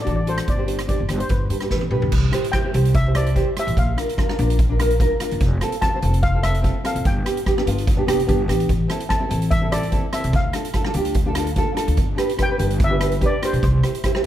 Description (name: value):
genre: calypso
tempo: 146 BPM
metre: 4/4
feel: swing 54% on 16ths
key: C major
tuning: A4 = 440 Hz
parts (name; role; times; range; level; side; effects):
- steel pan; melody; 0.0-14.3 s; B4 to A5; -26 LUFS; left 2 dB; none
- nylon-string guitar; accompaniment; 0.0-14.3 s; B3 to C5; -24 LUFS; right 1 dB; none
- upright bass; bass; 0.0-13.8 s; F1 to G2; -21 LUFS; equal; none
- street-band drum kit; drums; 0.1-14.3 s; crash cymbal, hi-hat, kick drum, rim click, snare drum, toms; -22 LUFS; equal; none
room: little or no reverb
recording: close, detailed microphones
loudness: -18 LUFS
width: side -12 dB against mid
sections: 0.0-2.1 A section; 2.1-14.3 B section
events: drum fill 1.7-2.1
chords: 0.5 Gsus4; 1.3 G; 2.1 C; 3.8 Bb; 5.4 F; 7.0 G; 8.7 Am; 10.3 Dm; 12.0 G; 13.6 C